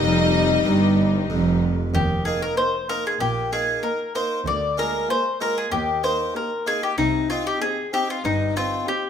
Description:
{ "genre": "classical, baroque-style concerto movement with solo episodes", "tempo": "95 BPM", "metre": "4/4", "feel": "straight", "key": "Eb major", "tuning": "A4 = 439 Hz", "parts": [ { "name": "mandolin", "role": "melody", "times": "0.0-9.1 s", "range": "Eb4 to D5", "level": "-23 LUFS", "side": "left 3 dB", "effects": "none" }, { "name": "warm studio violin section", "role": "melody", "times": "0.0-9.1 s", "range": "Eb5 to Bb5", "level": "-27 LUFS", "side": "left 3 dB", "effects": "none" }, { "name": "rich studio violin section", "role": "second line", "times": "0.0-9.1 s", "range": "Eb4 to G4", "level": "-30 LUFS", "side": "left 5 dB", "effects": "none" }, { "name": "harpsichord", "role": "accompaniment", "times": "0.0-9.0 s", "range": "D2 to F4", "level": "-29 LUFS", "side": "right 2 dB", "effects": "none" }, { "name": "rich chamber viola section", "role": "accompaniment", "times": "0.0-9.1 s", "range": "G3 to C4", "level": "-32 LUFS", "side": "left 3 dB", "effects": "none" }, { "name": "rich chamber double bass section", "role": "bass", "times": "0.0-8.7 s", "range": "F1 to Eb2", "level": "-27 LUFS", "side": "right 3 dB", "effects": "none" }, { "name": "warm studio cello section", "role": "bass", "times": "0.0-8.7 s", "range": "D2 to C3", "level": "-23 LUFS", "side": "right 2 dB", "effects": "none" } ], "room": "moderate recital hall reverb, RT60 1.4 s", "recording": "close, detailed microphones", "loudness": "-20 LUFS", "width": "side -8 dB against mid", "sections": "0.0-1.9 A section; 1.9-9.1 B section", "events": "none", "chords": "0.0 Eb; 1.9 Eb5; 4.5 Bb7/D; 5.7 Eb; 7.0 Cm" }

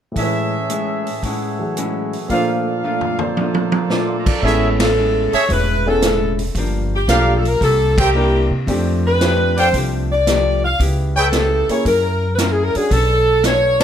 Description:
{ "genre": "jazz, big band swing", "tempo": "113 BPM", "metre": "4/4", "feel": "swing 69% on 8ths", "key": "unclear", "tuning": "A4 = 440 Hz", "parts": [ { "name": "warm grand piano", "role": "accompaniment", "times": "0.1-12.9 s", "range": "A2 to Bb5", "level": "-24 LUFS", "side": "equal", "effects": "none" }, { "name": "archtop guitar, miked and amplified", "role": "accompaniment", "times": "0.2-13.8 s", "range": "G2 to C#5", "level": "-25 LUFS", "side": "left 3 dB", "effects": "none" }, { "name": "clear trumpet section", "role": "stabs", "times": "0.2-13.8 s", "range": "G4 to D6", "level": "-21 LUFS", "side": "right 2 dB", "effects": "none" }, { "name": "swinging big-band drum kit", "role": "drums", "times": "0.2-13.8 s", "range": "crash cymbal, hi-hat, kick drum, ride cymbal, snare drum, toms", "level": "-22 LUFS", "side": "right 1 dB", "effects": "none" }, { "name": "upright bass", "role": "bass", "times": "4.4-13.8 s", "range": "E1 to C3", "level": "-19 LUFS", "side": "equal", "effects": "none" }, { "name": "bright saxophone section", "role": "melody", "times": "4.8-13.8 s", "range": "G4 to F5", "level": "-17 LUFS", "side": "left 1 dB", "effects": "none" } ], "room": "moderate large studio reverb, RT60 1.3 s", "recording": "none", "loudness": "-15 LUFS", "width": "side -9 dB against mid", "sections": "0.2-4.4 A section; 4.4-13.8 B section", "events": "drum fill 2.8-3.9; band accent 4.7, 7.9", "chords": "0.2 Amaj7; 2.3 Bbmaj7; 4.4 Amaj7; 6.6 Gm7; 7.6 C7; 8.7 F69; 10.8 C#m7b5; 11.9 F#7; 12.9 Bm9" }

